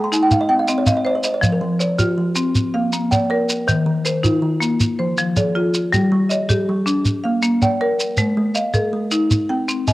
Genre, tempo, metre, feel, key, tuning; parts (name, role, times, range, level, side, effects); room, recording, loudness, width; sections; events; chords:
southern african traditional, mbira-style interlocking cycle; 107 BPM (dotted quarters); 12/8; straight; F equiheptatonic; A4 = 439 Hz
kalimba; arpeggios; 0.0-9.9 s; Eb3+29c to C6; -22 LUFS; right 2 dB; cassette tape
marimba with hard mallets; arpeggios; 0.0-9.9 s; Eb3+29c to G5-29c; -19 LUFS; left 2 dB; cassette tape
shekere; percussion; 0.1-9.9 s; -19 LUFS; right 1 dB
light reverb, small room reverb; home recording on cassette; -16 LUFS; side -18 dB against mid
0.0-9.9 A section
kalimba fill 0.0-1.4
0.3 Cm; 1.4 F5; 2.6 Bb; 3.7 Eb5; 4.8 Fm; 5.9 G5; 7.1 Bb; 8.2 Ab; 9.3 C5